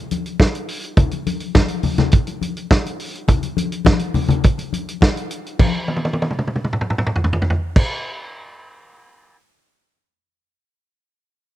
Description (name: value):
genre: disco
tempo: 104 BPM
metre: 4/4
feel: straight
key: none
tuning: none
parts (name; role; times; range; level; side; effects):
- warm soul drum kit; drums; 0.1-9.4 s; crash cymbal, hi-hat, kick drum, snare drum, toms; -17 LUFS; right 1 dB; none
- congas; percussion; 0.1-7.8 s; none; -21 LUFS; left 5 dB; none
room: little or no reverb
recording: dark, warm production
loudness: -17 LUFS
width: side -14 dB against mid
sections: 0.0-5.6 A section; 5.6-7.9 B section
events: drum fill 5.9-7.8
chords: none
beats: 0.39 | 0.97 1.54 2.12 2.70 | 3.28 3.86 4.44 5.02 | 5.59 6.17 6.75 7.33